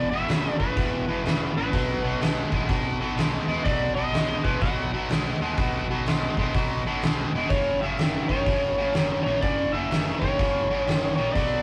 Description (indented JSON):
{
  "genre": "blues rock power trio and southern rock",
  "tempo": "125 BPM",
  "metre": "4/4",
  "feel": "swing 64% on 8ths",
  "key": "B mixolydian",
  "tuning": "A4 = 445 Hz",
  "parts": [
    { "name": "overdriven slide guitar", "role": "melody", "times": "0.0-11.6 s", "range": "B4 to F#5", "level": "-30 LUFS", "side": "equal", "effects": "none" },
    { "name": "bright tonewheel organ", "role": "sustained chords", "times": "0.0-11.6 s", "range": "D4 to C#5", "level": "-44 LUFS", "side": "equal", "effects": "none" },
    { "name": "distorted electric guitar", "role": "riff", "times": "0.0-11.6 s", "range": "E2 to G#3", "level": "-30 LUFS", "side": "equal", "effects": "overdrive" },
    { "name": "vintage muted fingered electric bass", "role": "bass", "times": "0.0-11.6 s", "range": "E1 to D#2", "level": "-36 LUFS", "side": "equal", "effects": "none" },
    { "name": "oversized low-tuned drum kit", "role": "drums", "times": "0.3-11.5 s", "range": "hi-hat, kick drum, snare drum", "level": "-29 LUFS", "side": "equal", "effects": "none" }
  ],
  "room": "wet booth ambience, RT60 0.2 s",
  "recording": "rough rehearsal-room recording",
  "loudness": "-25 LUFS",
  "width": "mono",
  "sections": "0.0-11.6 A section",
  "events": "none",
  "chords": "0.0 E7; 1.7 B7; 7.5 F#7"
}